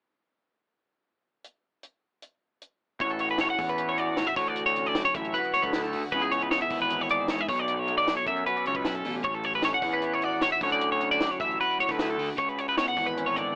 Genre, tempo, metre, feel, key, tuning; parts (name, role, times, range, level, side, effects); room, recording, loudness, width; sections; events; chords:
math rock and midwest emo; 154 BPM; 4/4; straight; A major; A4 = 439 Hz
compact cocktail drum kit; drums; 1.4-13.5 s; hi-hat, kick drum, snare drum; -36 LUFS; equal
clean electric guitar; accompaniment; 3.0-13.6 s; F#2 to A4; -36 LUFS; equal
twelve-string electric guitar; arpeggios; 3.0-13.6 s; G#4 to F#5; -29 LUFS; equal; tape echo
fuzz picked electric bass; bass; 3.0-13.6 s; G#1 to F#2; -36 LUFS; equal; overdrive
moderate studio ambience, RT60 0.5 s; AM radio sound; -27 LUFS; mono
1.4-3.0 A section; 3.0-13.6 B section
1.4 N.C.; 3.0 A69; 6.1 C#m7; 7.5 A69; 12.4 C#m7